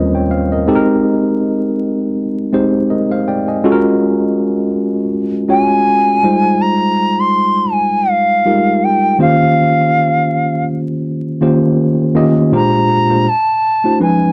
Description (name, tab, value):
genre	R&B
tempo	81 BPM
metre	4/4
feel	swing 56% on 16ths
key	unclear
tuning	A4 = 440 Hz
part	tine electric piano	accompaniment	0.0-14.3 s	Eb2 to Ab5	-15 LUFS	equal	overdrive
part	bright reedy bansuri	melody	5.5-14.3 s	F5 to C6	-15 LUFS	equal	none
room	light reverb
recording	dry, close 1970s-style studio recording, vinyl crackle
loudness	-14 LUFS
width	mono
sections	0.0-12.5 A section; 12.5-14.3 B section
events	none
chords	0.0 Eb13; 0.7 Abmaj9; 3.6 Gbmaj9; 6.2 Fm9; 9.2 Eb13; 12.5 Bb13; 13.3 D9